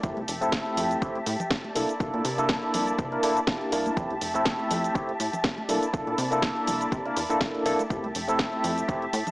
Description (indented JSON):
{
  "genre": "filtered disco house",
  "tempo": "122 BPM",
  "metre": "4/4",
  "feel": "swing 55% on 16ths",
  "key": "F major",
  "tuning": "A4 = 440 Hz",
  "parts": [
    { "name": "bell-like tine electric piano", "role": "accompaniment", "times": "0.0-9.0 s", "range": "A3 to Bb4", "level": "-27 LUFS", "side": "equal", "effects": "medium stereo tremolo, phaser, vintage 12-bit sampler grit, sidechain pumping, low-pass filter" },
    { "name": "rich chamber violin section", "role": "sustained chords", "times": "0.0-9.3 s", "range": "Bb3 to A5", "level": "-31 LUFS", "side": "equal", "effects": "sidechain pumping, low-pass filter" },
    { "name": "plucky analog bass", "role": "bass", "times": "0.0-9.2 s", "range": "F1 to C3", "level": "-34 LUFS", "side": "equal", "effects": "sidechain pumping, low-pass filter" },
    { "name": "electronic kick drum", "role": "drums", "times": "0.0-9.0 s", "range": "none", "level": "-31 LUFS", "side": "equal", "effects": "none" },
    { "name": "house drum kit", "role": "drums", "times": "0.0-9.3 s", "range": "hi-hat, shaker, snare drum", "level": "-31 LUFS", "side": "equal", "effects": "sidechain pumping on hats, sidechain pumping on cymbals, sidechain pumping on perc" },
    { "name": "tambourine and congas", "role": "percussion", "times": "0.0-9.3 s", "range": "none", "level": "-38 LUFS", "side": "right 1 dB", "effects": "sidechain pumping on perc, low-pass filter on perc" }
  ],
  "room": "moderate lush hall reverb, RT60 1.9 s, digital ambience",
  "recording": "small speaker sound",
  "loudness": "-24 LUFS",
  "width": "side -20 dB against mid",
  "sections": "0.0-9.3 A section",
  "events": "filter sweep 0.0-9.3",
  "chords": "0.0 Fmaj9; 1.8 C13; 4.0 Fmaj9; 5.7 C13; 7.9 Fmaj9",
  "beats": "| 0.04 0.53 1.02 1.51 | 2.00 2.50 2.99 3.48 | 3.97 4.46 4.95 5.45 | 5.94 6.43 6.92 7.41 | 7.91 8.40 8.89"
}